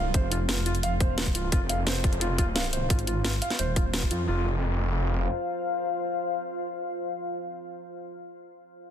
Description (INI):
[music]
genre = dark technical drum and bass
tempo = 174 BPM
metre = 4/4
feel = straight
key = unclear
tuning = A4 = 440 Hz
[part]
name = deep dark ambient pad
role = sustained chords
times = 0.0-7.8 s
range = F4 to Bb5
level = -33 LUFS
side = left 3 dB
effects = chorus, built-in reverb, sidechain pumping
[part]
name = felt-muted upright piano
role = arpeggios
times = 0.0-4.4 s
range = F4 to F5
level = -32 LUFS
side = right 1 dB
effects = sidechain pumping, low-pass filter, dub echo
[part]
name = snarling distorted saw bass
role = bass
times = 0.0-5.3 s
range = Eb1 to F2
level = -28 LUFS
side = equal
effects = distortion, overdrive, sidechain pumping
[part]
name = drum and bass drum kit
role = drums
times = 0.1-4.2 s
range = hi-hat, snare drum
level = -30 LUFS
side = equal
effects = none
[part]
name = electronic kick drum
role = drums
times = 0.1-4.1 s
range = none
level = -25 LUFS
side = equal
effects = none
[sound]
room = light reverb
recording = dense, heavily limited modern master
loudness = -25 LUFS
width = side -9 dB against mid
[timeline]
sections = 0.0-4.3 A section; 4.3-7.0 B section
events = none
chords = 0.0 Fm; 4.3 F5